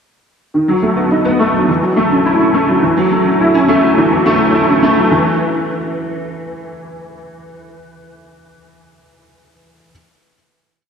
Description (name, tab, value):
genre	electronica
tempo	105 BPM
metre	4/4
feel	straight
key	unclear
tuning	A4 = 441 Hz
part	warm baby grand piano	solo	0.5-9.9 s	D#3 to E4	-12 LUFS	equal	ensemble chorus
room	wet plate reverb, RT60 2.9 s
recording	dreamy mix soaked in reverb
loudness	-11 LUFS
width	side -6 dB against mid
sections	0.5-5.1 build; 5.1-7.4 final chord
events	build-up 0.5-5.1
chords	none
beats	| 0.54 1.11 1.68 2.25 | 2.83 3.40 3.97 4.54 | 5.11 5.68 6.25 6.83